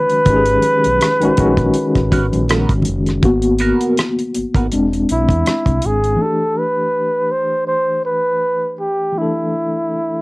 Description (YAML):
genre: R&B, neo-soul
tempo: 81 BPM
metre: 4/4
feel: swing 56% on 16ths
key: A minor from 6.2 s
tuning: A4 = 440 Hz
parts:
  - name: breathy flugelhorn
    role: melody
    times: 0.0-10.2 s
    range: E4 to C5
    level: -16 LUFS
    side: equal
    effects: cassette tape
  - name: mellow tine electric piano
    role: accompaniment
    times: 0.0-10.2 s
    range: D#3 to A4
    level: -18 LUFS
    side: left 2 dB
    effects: medium tremolo
  - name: damped 70s drum kit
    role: drums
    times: 0.1-6.2 s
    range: hi-hat, kick drum, rim click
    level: -18 LUFS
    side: equal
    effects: cassette tape
  - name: smooth gliding synth bass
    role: bass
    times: 0.3-6.2 s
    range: E1 to E2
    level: -20 LUFS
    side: equal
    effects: none
  - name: congas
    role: percussion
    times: 0.3-3.0 s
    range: none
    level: -28 LUFS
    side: right 2 dB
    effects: none
  - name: electric guitar at the edge of break-up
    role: second line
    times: 2.1-4.7 s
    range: B3 to A#4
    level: -21 LUFS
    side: right 3 dB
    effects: wah
room: light reverb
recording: home recording on cassette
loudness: -14 LUFS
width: side -23 dB against mid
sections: 0.0-3.2 A section; 3.2-6.2 B section; 6.2-10.2 C section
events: tine electric piano solo 3.2-6.2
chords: 0.0 G#m9; 4.7 E7b13; 6.2 A9sus4